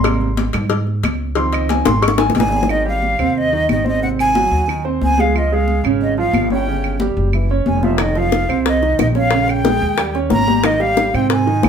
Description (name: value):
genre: Afro-Cuban jazz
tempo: 181 BPM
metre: 4/4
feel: straight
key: Ab major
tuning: A4 = 440 Hz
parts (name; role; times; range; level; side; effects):
- warm grand piano; accompaniment; 0.0-11.7 s; C3 to Db6; -20 LUFS; right 4 dB; none
- upright bass; bass; 0.0-11.7 s; F1 to Ab2; -20 LUFS; equal; none
- congas; percussion; 0.0-11.7 s; none; -22 LUFS; left 3 dB; none
- cowbell and bongos; percussion; 0.0-2.7, 8.0-11.7 s; none; -20 LUFS; left 5 dB; none
- claves; percussion; 0.1-11.7 s; none; -29 LUFS; right 7 dB; none
- breathy bright jazz flute; melody; 2.4-11.7 s; Eb5 to Bb5; -19 LUFS; equal; none
room: moderate studio reverb, RT60 0.7 s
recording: band playing live in one room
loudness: -14 LUFS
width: side -7 dB against mid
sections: 0.0-2.7 A section; 2.7-11.7 B section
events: grand piano solo 0.0-2.7; drum fill 1.9-2.7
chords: 0.0 Abmaj7; 1.4 Dbmaj7; 2.7 Abmaj7; 4.0 Ab7; 5.3 Db; 6.7 Gb5; 8.0 F5; 9.3 Bbm7; 10.0 Eb7; 10.6 Abmaj7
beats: | 0.05 0.38 0.71 1.04 | 1.37 1.70 2.03 2.36 | 2.69 3.02 3.35 3.69 | 4.02 4.35 4.68 5.01 | 5.34 5.67 6.01 6.34 | 6.67 7.00 7.33 7.66 | 7.99 8.33 8.66 8.99 | 9.32 9.65 9.98 10.31 | 10.64 10.98 11.31 11.64